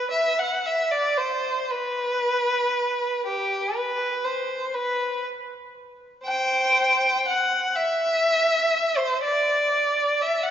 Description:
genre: classical, free, expressive piece for unaccompanied violin.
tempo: 34-42 BPM (dotted quarters).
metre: 6/8.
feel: rubato.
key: unclear.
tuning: A4 = 440 Hz.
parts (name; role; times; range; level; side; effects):
rich violin; solo; 0.0-10.5 s; G4 to G5; -21 LUFS; equal; none.
room: wet church reverb, RT60 2.7 s.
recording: nothing above 7.4 kHz.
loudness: -21 LUFS.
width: side -10 dB against mid.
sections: 0.1-10.5 A section.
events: none.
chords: none.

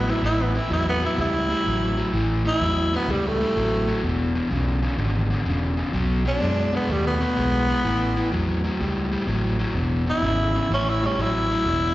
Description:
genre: electric blues shuffle.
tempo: 126 BPM.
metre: 4/4.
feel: swing 67% on 8ths.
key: unclear.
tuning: A4 = 440 Hz.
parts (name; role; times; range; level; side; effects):
growling tenor saxophone; melody; 0.0-11.9 s; G3 to E4; -24 LUFS; right 1 dB; slapback echo.
overdriven semi-hollow guitar; riff; 0.0-11.9 s; E2 to A3; -25 LUFS; left 1 dB; slapback echo.
vintage muted fingered electric bass; bass; 0.0-11.9 s; E1 to F#2; -25 LUFS; equal; none.
room: light reverb, small room ambience.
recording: live gig heard through the venue's PA, recital hall reverb, nothing above 7.7 kHz.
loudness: -20 LUFS.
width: side -16 dB against mid.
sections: 0.0-11.9 A section.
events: tenor saxophone solo 0.0-11.9.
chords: 0.0 A; 4.0 E; 5.9 B; 7.8 A; 9.8 E; 10.7 A5.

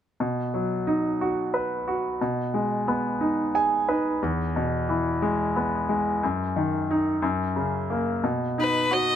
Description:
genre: pop.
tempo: 60 BPM (dotted quarters).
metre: 6/8.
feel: straight.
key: B major.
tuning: A4 = 440 Hz.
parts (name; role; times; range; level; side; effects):
bright concert grand piano; accompaniment; 0.2-9.2 s; E2 to G#5; -23 LUFS; equal; none.
bright violin; melody; 8.6-9.2 s; B4 to D#5; -22 LUFS; left 3 dB; none.
room: light reverb.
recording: none.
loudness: -23 LUFS.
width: side -9 dB against mid.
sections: 0.2-8.2 A section.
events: grand piano fill 3.2-4.2.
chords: 0.2 B; 2.2 G#m/B; 4.2 E; 6.2 D#m/F#; 7.2 F#; 8.2 B.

